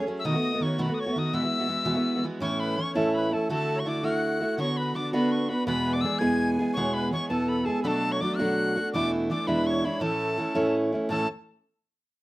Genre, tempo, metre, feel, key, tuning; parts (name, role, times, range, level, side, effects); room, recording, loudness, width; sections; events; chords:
celtic folk, Celtic jig; 111 BPM (dotted quarters); 6/8; straight; A major; A4 = 440 Hz
musette accordion; second line; 0.0-11.3 s; A4 to G#5; -35 LUFS; left 1 dB
picked steel-string acoustic guitar; accompaniment; 0.0-11.3 s; E2 to G#4; -25 LUFS; right 1 dB
bright tin whistle; melody; 0.2-11.3 s; A5 to G#6; -31 LUFS; left 2 dB
moderate studio reverb, RT60 0.7 s; rough home demo mix; -24 LUFS; side -18 dB against mid
0.0-2.4 A section; 2.4-11.1 B section; 11.1-12.2 C section
0.2 B7; 1.3 Eadd9; 2.4 A; 3.5 Dadd9; 4.6 Bm/D; 5.7 E; 7.8 Bm7; 8.9 E7sus4; 9.5 E7; 10.0 A